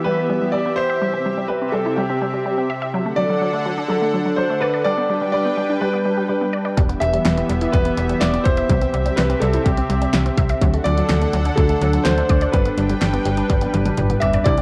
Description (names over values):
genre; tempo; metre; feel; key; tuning
synth-pop; 125 BPM; 4/4; straight; unclear; A4 = 440 Hz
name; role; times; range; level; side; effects
clear grand piano; melody; 0.0-14.6 s; G4 to E5; -25 LUFS; equal; cassette tape, tape echo
lush unison pad; sustained chords; 0.0-14.6 s; C3 to G5; -25 LUFS; equal; chorus, cassette tape
resonant blip pluck; arpeggios; 0.1-14.6 s; E3 to E5; -28 LUFS; equal; chorus, cassette tape, tape echo
slap-like FM bass; bass; 6.8-14.6 s; E1 to D2; -24 LUFS; equal; none
pop drum kit; drums; 6.8-14.6 s; hi-hat, kick drum, snare drum, toms; -23 LUFS; equal; none
analog pluck; accompaniment; 14.5-14.6 s; G3 to E4; -27 LUFS; equal; chorus, cassette tape
room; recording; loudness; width
moderate spring reverb, RT60 1.2 s; home recording on cassette; -19 LUFS; mono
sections
0.0-14.5 A section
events
drum fill 13.5-14.5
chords
0.0 Em; 1.0 C; 2.9 D; 4.9 G; 6.8 Em; 8.7 C; 10.6 D; 12.5 G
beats
0.06 0.54 | 1.02 1.50 1.98 2.46 | 2.94 3.42 3.90 4.38 | 4.86 5.34 5.82 6.30 | 6.78 7.26 7.74 8.22 | 8.70 9.18 9.66 10.14 | 10.62 11.10 11.58 12.06 | 12.54 13.02 13.50 13.98 | 14.46